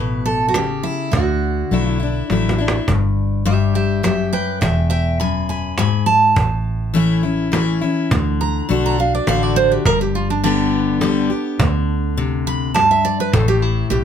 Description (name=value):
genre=honky-tonk and classic country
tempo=103 BPM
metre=3/4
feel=straight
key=unclear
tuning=A4 = 440 Hz
part: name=picked steel-string acoustic guitar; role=melody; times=0.0-14.0 s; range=D4 to B5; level=-19 LUFS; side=right 4 dB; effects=none
part: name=picked steel-string acoustic guitar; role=accompaniment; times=0.0-14.0 s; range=E2 to G4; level=-19 LUFS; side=left 6 dB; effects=none
part: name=vintage muted fingered electric bass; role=bass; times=0.0-14.0 s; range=E1 to D2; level=-22 LUFS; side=right 1 dB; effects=none
part: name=cajon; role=drums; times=0.5-14.0 s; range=none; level=-20 LUFS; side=right 1 dB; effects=none
room=light reverb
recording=none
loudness=-15 LUFS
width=side -8 dB against mid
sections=0.0-2.9 A section; 2.9-14.0 B section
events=drum fill 2.3-2.9; steel-string acoustic guitar solo 2.9-14.0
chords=0.0 A; 1.1 Dadd9; 2.9 N.C.; 4.6 E; 6.4 A; 8.1 D; 9.9 G; 11.6 D7sus4; 13.3 A7(no3)